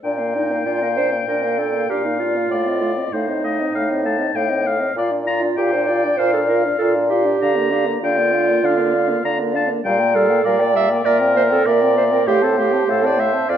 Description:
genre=quick classical-period movement for wind quintet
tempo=98 BPM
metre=4/4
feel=straight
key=Bb major, F major from 9.8 s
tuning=A4 = 440 Hz
part: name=hollow concert flute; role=melody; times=0.0-13.6 s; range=D5 to A5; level=-26 LUFS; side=left 8 dB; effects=none
part: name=clear oboe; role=second line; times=0.0-13.6 s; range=Bb4 to Bb5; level=-25 LUFS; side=left 4 dB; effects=none
part: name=warm French horn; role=accompaniment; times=0.0-13.6 s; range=G3 to F4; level=-25 LUFS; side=left 1 dB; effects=none
part: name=mellow bassoon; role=bass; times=0.0-13.6 s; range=F2 to D3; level=-20 LUFS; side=equal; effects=none
part: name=warm clarinet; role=accompaniment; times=0.3-13.6 s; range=Eb4 to E5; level=-21 LUFS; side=right 6 dB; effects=none
room=wet recital hall reverb, RT60 1.5 s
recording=dark, warm production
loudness=-16 LUFS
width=side -9 dB against mid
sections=0.0-13.6 A section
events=none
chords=0.0 Bb; 2.5 F7/A; 5.0 Bb; 7.4 Bb/D; 9.8 Gm7/Bb; 11.1 C7/Bb; 12.3 F/A

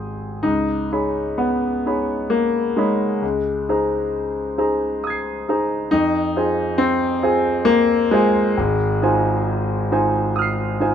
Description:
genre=classical, impressionist solo piano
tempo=67 BPM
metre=3/4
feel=rubato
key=Ab major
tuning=A4 = 440 Hz
part: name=clear concert grand piano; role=solo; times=0.0-10.9 s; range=Ab1 to C7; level=-18 LUFS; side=left 1 dB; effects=none
room=light reverb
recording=close, detailed microphones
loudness=-17 LUFS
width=side -8 dB against mid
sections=0.4-10.9 A section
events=none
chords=0.4 Dbsus2; 3.2 Abadd9/Db; 5.9 Fm7; 8.6 Ab6

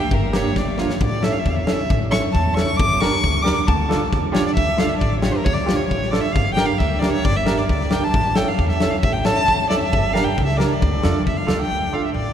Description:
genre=klezmer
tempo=135 BPM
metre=2/4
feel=straight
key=D harmonic minor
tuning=A4 = 442 Hz
part: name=rich violin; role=melody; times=0.0-12.3 s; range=Bb4 to D6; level=-22 LUFS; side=equal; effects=none
part: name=upright bass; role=bass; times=0.1-12.3 s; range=G1 to F2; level=-24 LUFS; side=equal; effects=none
part: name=big rock drum kit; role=drums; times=0.1-11.6 s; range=kick drum, snare drum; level=-22 LUFS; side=left 2 dB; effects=none
part: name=clear upright piano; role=accompaniment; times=0.3-12.0 s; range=Bb3 to Bb4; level=-23 LUFS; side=right 3 dB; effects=none
room=wet cathedral reverb, RT60 6.0 s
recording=recorded in a church or concert hall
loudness=-17 LUFS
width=side -9 dB against mid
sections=0.0-4.6 A section; 4.6-11.7 B section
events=violin solo 0.0-4.6; drum fill 0.6-1.0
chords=0.0 Gm; 1.0 A; 2.8 Gm; 3.7 Dm; 6.4 Gm; 8.1 A; 9.9 Gm; 10.8 Dm

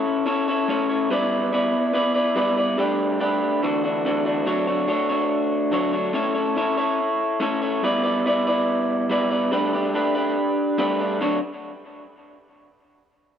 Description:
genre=rock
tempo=142 BPM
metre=4/4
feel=straight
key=D major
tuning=A4 = 440 Hz
part: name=electric guitar through a small old amp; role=solo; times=0.0-11.4 s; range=D3 to D5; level=-20 LUFS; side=equal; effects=tape echo
room=wet studio reverb, RT60 0.7 s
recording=band playing live in one room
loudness=-20 LUFS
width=side -8 dB against mid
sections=0.0-4.5 A section; 4.5-11.2 B section; 11.2-12.9 C section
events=none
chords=0.0 A; 1.1 Em7/G; 2.8 Gadd9; 3.6 Dadd9; 4.5 Dmaj7; 6.1 A; 7.8 Em7/G; 9.5 Gadd9; 11.2 Dmaj7

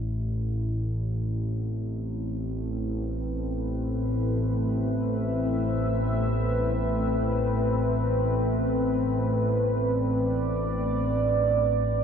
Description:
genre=dark ambient drone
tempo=free time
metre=none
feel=none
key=A minor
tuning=A4 = 440 Hz
part: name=deep dark ambient pad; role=sustained chords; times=1.5-12.0 s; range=A3 to E5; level=-27 LUFS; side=equal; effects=chorus, built-in reverb
part: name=analog drone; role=drone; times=0.0-12.0 s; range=A1 to A2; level=-27 LUFS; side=equal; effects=wide subtle chorus
room=wet huge ambient reverb, RT60 8.9 s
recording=none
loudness=-24 LUFS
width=side -7 dB against mid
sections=0.0-12.0 A section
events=none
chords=0.0 Amadd9

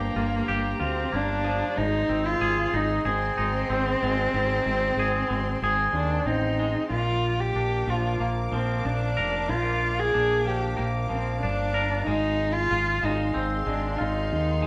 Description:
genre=post-rock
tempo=93 BPM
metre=4/4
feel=straight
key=unclear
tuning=A4 = 440 Hz
part: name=dark cello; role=melody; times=0.0-14.7 s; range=Bb3 to Ab4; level=-29 LUFS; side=equal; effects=none
part: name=rich studio string section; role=sustained chords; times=0.0-14.7 s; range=Ab3 to D6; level=-41 LUFS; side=equal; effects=none
part: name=twangy electric guitar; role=arpeggios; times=0.0-14.7 s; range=G2 to Bb4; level=-32 LUFS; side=equal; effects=none
part: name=growling fingered electric bass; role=bass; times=0.0-14.7 s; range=F1 to Eb2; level=-31 LUFS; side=equal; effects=overdrive
room=wet large studio reverb, RT60 0.9 s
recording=band playing live in one room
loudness=-26 LUFS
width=mono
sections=0.0-6.9 A section; 6.9-14.7 B section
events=build-up 6.9-14.7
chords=0.0 Gm7; 1.8 Ab; 6.9 Bb; 12.1 Fm/Ab

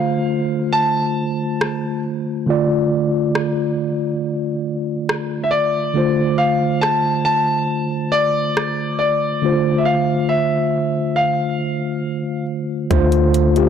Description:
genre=contemporary R&B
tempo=69 BPM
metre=4/4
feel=straight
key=unclear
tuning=A4 = 441 Hz
part: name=warm concert grand piano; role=melody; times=0.0-12.4 s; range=D5 to A5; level=-20 LUFS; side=equal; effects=digital delay
part: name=mellow tine electric piano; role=accompaniment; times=0.0-13.7 s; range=D3 to D5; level=-19 LUFS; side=equal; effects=slow stereo tremolo
part: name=trap drum kit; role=drums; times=1.6-13.7 s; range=hi-hat, kick drum, rim click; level=-23 LUFS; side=equal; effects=none
part: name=soft 808-style bass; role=bass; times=12.9-13.7 s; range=D2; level=-18 LUFS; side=equal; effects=none
room=light reverb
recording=blown-out, overdriven recording, overdrive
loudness=-16 LUFS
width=side -8 dB against mid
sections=0.0-12.9 A section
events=none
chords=0.0 Dm7

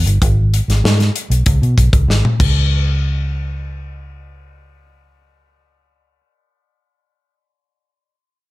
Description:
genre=polished 1980s jazz-funk pop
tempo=96 BPM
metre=4/4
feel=straight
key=unclear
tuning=A4 = 440 Hz
part: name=vintage muted fingered electric bass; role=bass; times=0.0-6.2 s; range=G1 to B2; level=-15 LUFS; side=equal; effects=none
part: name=modern studio drum kit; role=drums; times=0.1-2.5 s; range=crash cymbal, hi-hat, kick drum, snare drum, toms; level=-16 LUFS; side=equal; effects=gated reverb
room=little or no reverb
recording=none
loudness=-12 LUFS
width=side -19 dB against mid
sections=0.0-2.7 A section; 2.7-5.2 B section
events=drum fill 2.1-2.7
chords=none

